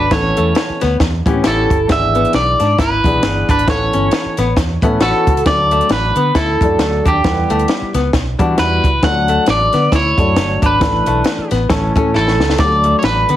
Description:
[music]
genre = uptempo 1960s-style soul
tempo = 135 BPM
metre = 4/4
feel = swing 59% on 8ths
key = D major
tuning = A4 = 440 Hz
[part]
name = electric guitar at the edge of break-up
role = melody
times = 0.0-13.4 s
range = G4 to F#5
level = -16 LUFS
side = right 1 dB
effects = plate reverb
[part]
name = archtop guitar, miked and amplified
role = riff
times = 0.0-13.4 s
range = A3 to F#4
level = -20 LUFS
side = left 3 dB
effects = none
[part]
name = fingered electric bass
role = bass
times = 0.0-13.4 s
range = G1 to E3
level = -19 LUFS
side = right 1 dB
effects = none
[part]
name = dark concert grand piano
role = accompaniment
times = 0.1-13.3 s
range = E3 to B5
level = -20 LUFS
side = left 2 dB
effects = plate reverb
[part]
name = compact cocktail drum kit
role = drums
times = 0.1-13.4 s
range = hi-hat, kick drum, snare drum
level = -17 LUFS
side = equal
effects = none
[sound]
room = moderate studio reverb, RT60 0.6 s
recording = heavily compressed radio sound, multiband compression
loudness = -12 LUFS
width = side -12 dB against mid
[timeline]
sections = 0.0-5.5 A section; 5.5-13.4 A section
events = grand piano fill 4.6-5.5; drum fill 12.1-12.6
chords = 0.1 Aadd9; 1.9 E7/G#; 3.7 Aadd9; 5.5 D; 7.2 Em; 9.0 D; 10.8 Asus4; 11.7 A; 12.6 D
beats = | 0.11 0.55 1.00 1.45 | 1.89 2.34 2.78 3.23 | 3.68 4.12 4.57 5.01 | 5.46 5.91 6.35 6.80 | 7.24 7.69 8.13 8.58 | 9.03 9.47 9.92 10.36 | 10.81 11.25 11.70 12.14 | 12.59 13.03

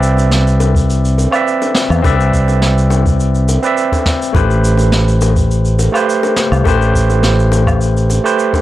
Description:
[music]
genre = sunset chillout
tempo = 104 BPM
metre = 4/4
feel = straight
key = unclear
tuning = A4 = 442 Hz
[part]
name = overdriven tine electric piano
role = accompaniment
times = 0.0-8.6 s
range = A3 to E5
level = -15 LUFS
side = moving between left 5 dB and right 4 dB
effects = auto-pan, analog delay
[part]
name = fretless electric bass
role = bass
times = 0.0-8.2 s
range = A1 to E2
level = -12 LUFS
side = equal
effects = none
[part]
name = shaker, snare drum and woodblock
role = drums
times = 0.0-8.6 s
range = none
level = -20 LUFS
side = equal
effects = none
[part]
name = bongos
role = percussion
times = 0.2-8.6 s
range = none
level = -24 LUFS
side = left 4 dB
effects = none
[part]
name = electronic kick drum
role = drums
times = 0.7-8.6 s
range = none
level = -16 LUFS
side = equal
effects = overdrive
[sound]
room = little or no reverb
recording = dry, gritty hardware recording, transformer saturation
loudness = -10 LUFS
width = side -14 dB against mid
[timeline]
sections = 0.0-8.6 A section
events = none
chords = 0.0 Cmaj9; 4.3 Am9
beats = 0.31 0.89 1.47 | 2.04 2.62 3.20 3.77 | 4.35 4.93 5.50 6.08 | 6.66 7.23 7.81 8.39

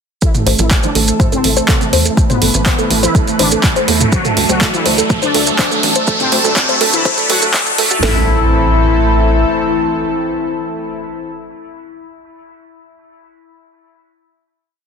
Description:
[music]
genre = melodic techno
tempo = 123 BPM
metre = 4/4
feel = straight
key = A dorian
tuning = A4 = 440 Hz
[part]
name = resonant sweep polysynth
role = melody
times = 0.2-11.3 s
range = B2 to F#4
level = -18 LUFS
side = left 1 dB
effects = chorus, dub echo
[part]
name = lush unison pad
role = sustained chords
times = 0.2-11.3 s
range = E3 to B4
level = -21 LUFS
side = right 1 dB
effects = chorus, sidechain pumping
[part]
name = woody wave-folded pluck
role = arpeggios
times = 0.2-8.3 s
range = F#4 to A5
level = -20 LUFS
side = left 1 dB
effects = chorus, sidechain pumping, dub echo
[part]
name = deep house drum kit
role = drums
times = 0.2-8.1 s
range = hi-hat, kick drum, snare drum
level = -16 LUFS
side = equal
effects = overdrive
[part]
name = punchy analog drum machine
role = drums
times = 0.2-8.0 s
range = handclaps, hi-hat, toms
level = -17 LUFS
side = right 2 dB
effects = overdrive
[part]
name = maracas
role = percussion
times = 0.2-8.0 s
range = none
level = -21 LUFS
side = right 4 dB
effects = none
[part]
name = riser and impact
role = sound effects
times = 2.4-11.3 s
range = none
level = -20 LUFS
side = left 1 dB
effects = none
[part]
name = tight sequencer bass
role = bass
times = 0.5-9.5 s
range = A1 to E2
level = -17 LUFS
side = equal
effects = sidechain pumping
[sound]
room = light reverb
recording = dense, heavily limited modern master, high-pass filter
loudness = -11 LUFS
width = side -6 dB against mid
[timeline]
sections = 0.2-8.0 build; 8.0-11.9 final chord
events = build-up 0.2-8.0; filter sweep on synth pluck 0.2-8.0; filter sweep on analog polysynth 0.2-8.0; filter sweep on analog synth pad 0.2-8.0; filter sweep 0.2-8.0; riser 2.4-8.0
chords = 0.2 Am; 4.1 D; 8.0 Am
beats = | 0.22 0.71 1.20 1.69 | 2.17 2.66 3.15 3.64 | 4.12 4.61 5.10 5.59 | 6.08 6.56 7.05 7.54 | 8.03 8.52 9.00 9.49 | 9.98 10.47 10.95

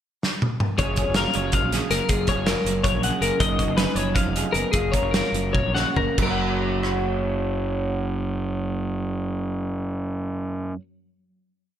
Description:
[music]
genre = math rock and midwest emo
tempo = 271-322 BPM (eighths)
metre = 7/8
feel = straight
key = F# major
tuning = A4 = 441 Hz
[part]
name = loose indie drum kit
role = drums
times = 0.2-6.9 s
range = crash cymbal, hi-hat, kick drum, rim click, snare drum, toms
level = -25 LUFS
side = equal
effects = gated reverb
[part]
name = electric guitar through a small old amp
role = accompaniment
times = 0.8-10.8 s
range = F#2 to F#5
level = -28 LUFS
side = right 6 dB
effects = wide subtle chorus
[part]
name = twelve-string electric guitar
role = arpeggios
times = 0.8-10.8 s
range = F#4 to F#5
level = -25 LUFS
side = left 5 dB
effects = lush chorus
[part]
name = fuzz fingered electric bass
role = bass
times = 0.8-10.7 s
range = E#1 to A#1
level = -27 LUFS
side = equal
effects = overdrive
[sound]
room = moderate lush hall reverb, RT60 1.8 s, studio reverb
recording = bright 1980s-style digital production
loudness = -21 LUFS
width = side -10 dB against mid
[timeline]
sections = 0.0-0.8 pickup bar; 0.8-6.2 A section; 6.2-9.3 final chord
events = drum fill 0.2-0.8, 5.5-6.2; slowing down 3.4-6.2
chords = 0.0 N.C.; 0.8 F#maj9; 3.4 C#9/F#; 4.7 F#maj7; 6.2 F#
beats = 0.04 0.22 0.41 0.60 | 0.79 0.97 1.16 1.35 1.53 1.72 1.91 | 2.09 2.28 2.47 2.65 2.84 3.03 3.21 | 3.40 3.59 3.78 3.96 4.15 4.35 4.54 | 4.73 4.93 5.13 5.34 5.54 5.75 5.97 | 6.18 6.40 6.62 6.84 7.07 7.29 7.51 | 7.73 7.95 8.17 8.39 8.61 8.83 9.05

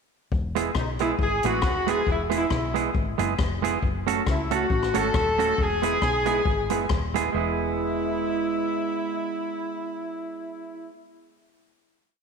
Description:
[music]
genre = ska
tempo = 137 BPM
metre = 4/4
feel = swing 56% on 8ths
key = E major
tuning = A4 = 440 Hz
[part]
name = fingered electric bass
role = bass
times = 0.3-10.9 s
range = D#1 to C#2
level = -31 LUFS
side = left 1 dB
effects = none
[part]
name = swinging big-band drum kit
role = drums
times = 0.3-7.2 s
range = hi-hat, kick drum, rim click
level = -28 LUFS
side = left 3 dB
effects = none
[part]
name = semi-hollow electric guitar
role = accompaniment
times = 0.6-10.9 s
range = G#3 to A4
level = -27 LUFS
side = right 7 dB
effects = none
[part]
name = warm horn section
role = melody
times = 0.8-10.9 s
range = D#4 to A4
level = -27 LUFS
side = left 1 dB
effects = none
[sound]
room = wet echo chamber reverb, RT60 1.8 s, small room ambience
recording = 1960s-style stereo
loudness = -22 LUFS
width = side -5 dB against mid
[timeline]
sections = 0.3-7.3 A section; 7.3-10.9 final chord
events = none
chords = 0.3 E; 3.8 F#m; 5.6 E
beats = | 0.31 0.75 1.19 1.63 | 2.07 2.50 2.94 3.38 | 3.82 4.26 4.70 5.14 | 5.58 6.02 6.46 6.90 | 7.34 7.78 8.22 8.66 | 9.10 9.54 9.98 10.41

